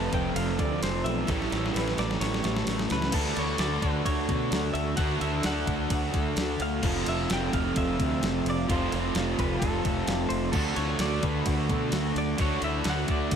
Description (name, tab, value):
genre	rock, shoegaze and dream pop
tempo	130 BPM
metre	4/4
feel	straight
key	unclear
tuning	A4 = 440 Hz
part	direct-recorded clean electric guitar	melody	0.0-13.3 s	A4 to A5	-34 LUFS	equal	wide subtle chorus, tape echo
part	picked twelve-string acoustic guitar	arpeggios	0.0-13.4 s	E4 to B4	-38 LUFS	right 2 dB	analog chorus, tape echo
part	fuzz guitar	riff	0.0-13.4 s	F2 to D4	-34 LUFS	left 7 dB	distortion, analog chorus
part	overdriven electric guitar	riff	0.0-13.4 s	A2 to A4	-32 LUFS	right 7 dB	reverse reverb
part	overdriven electric guitar	riff	0.0-13.4 s	F2 to D4	-35 LUFS	left 1 dB	none
part	fuzz fingered electric bass	bass	0.0-13.4 s	F1 to B2	-32 LUFS	left 1 dB	overdrive
part	clean 12-bit digital drum machine	drums	0.1-13.4 s	crash cymbal, kick drum, ride cymbal, snare drum	-31 LUFS	equal	none
room	moderate huge ambient reverb, RT60 6.0 s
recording	dreamy mix soaked in reverb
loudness	-25 LUFS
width	side -7 dB against mid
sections	0.0-3.1 A section; 3.1-13.4 B section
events	drum fill 1.3-3.1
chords	0.0 F; 1.3 A7; 3.1 Dmaj7; 6.8 Fmaj7; 10.5 D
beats	0.36 0.82 | 1.28 1.74 2.21 2.67 | 3.13 3.60 4.06 4.52 | 4.98 5.45 5.91 6.37 | 6.83 7.30 7.76 8.22 | 8.69 9.15 9.61 10.07 | 10.54 11.00 11.46 11.93 | 12.39 12.86 13.32